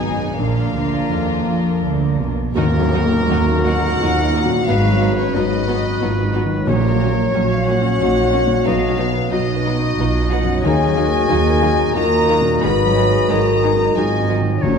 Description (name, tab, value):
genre	cinematic, emotional film score for orchestra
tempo	90 BPM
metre	3/4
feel	rubato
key	Eb minor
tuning	A4 = 436 Hz
part	clear studio violin section	melody	0.0-14.8 s	Bb4 to Cb6	-24 LUFS	left 4 dB	none
part	warm studio violin section	second line	0.0-14.8 s	Ab3 to Bb4	-29 LUFS	left 2 dB	none
part	dark studio viola section	accompaniment	0.0-14.8 s	Eb3 to Eb4	-27 LUFS	right 2 dB	none
part	warm concert grand piano	accompaniment	0.0-14.8 s	Bb1 to Db5	-23 LUFS	left 2 dB	none
part	mellow French horn section	sustained chords	0.0-14.8 s	F3 to Cb5	-23 LUFS	left 3 dB	none
part	concert harp	arpeggios	0.0-14.8 s	Ab2 to Db6	-26 LUFS	left 7 dB	none
part	dark studio double bass section	bass	0.0-14.8 s	Ab1 to F2	-22 LUFS	right 5 dB	none
part	warm studio cello section	bass	0.0-14.8 s	Eb2 to F3	-24 LUFS	right 3 dB	none
part	bright oboe	second line	2.6-14.8 s	Bb4 to D#5	-26 LUFS	right 2 dB	none
part	mellow clarinet	second line	2.6-14.8 s	F#4 to Gb4	-26 LUFS	right 1 dB	none
part	tam-tam	percussion	2.6-5.3 s	none	-28 LUFS	left 1 dB	none
part	timpani	percussion	6.7-7.6, 14.6-14.8 s	Bb2	-25 LUFS	right 2 dB	none
room	wet scoring stage reverb, RT60 2.1 s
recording	dark, warm production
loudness	-15 LUFS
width	side -6 dB against mid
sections	0.0-2.6 A section; 2.6-14.8 B section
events	band accent 2.6-3.3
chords	0.4 Bb; 2.6 Ebm; 4.7 Abm7; 6.7 Gb/Bb; 8.7 B; 10.6 Ebm; 12.6 Abm7